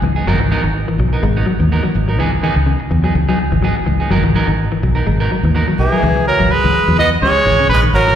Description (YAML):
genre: afrobeat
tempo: 125 BPM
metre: 4/4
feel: swing 55% on 16ths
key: C# dorian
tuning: A4 = 439 Hz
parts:
  - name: clean electric guitar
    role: arpeggios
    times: 0.0-8.1 s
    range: C#3 to G#3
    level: -20 LUFS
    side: left 6 dB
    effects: spring reverb, slapback echo
  - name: clean electric guitar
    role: stabs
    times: 0.0-6.0 s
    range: E3 to A#4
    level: -21 LUFS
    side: right 4 dB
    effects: spring reverb, slapback echo
  - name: fingered electric bass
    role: bass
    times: 0.0-8.2 s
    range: G#1 to E2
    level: -16 LUFS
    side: equal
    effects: none
  - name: bright trumpet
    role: melody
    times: 5.8-8.2 s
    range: G#4 to D#5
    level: -14 LUFS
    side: right 2 dB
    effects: slapback echo
  - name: raspy tenor saxophone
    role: second line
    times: 5.8-8.2 s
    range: E3 to B3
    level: -18 LUFS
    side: right 2 dB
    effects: slapback echo
room: light reverb, small room ambience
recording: live gig heard through the venue's PA, recital hall reverb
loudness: -12 LUFS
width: side -10 dB against mid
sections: 0.0-6.0 A section; 6.0-8.2 B section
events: none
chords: 0.3 G#m9; 2.2 C#m9; 4.1 G#m9; 6.0 C#m7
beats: | 0.26 0.74 1.23 1.71 | 2.19 2.67 3.15 3.63 | 4.11 4.59 5.07 5.55 | 6.03 6.51 6.99 7.46 | 7.94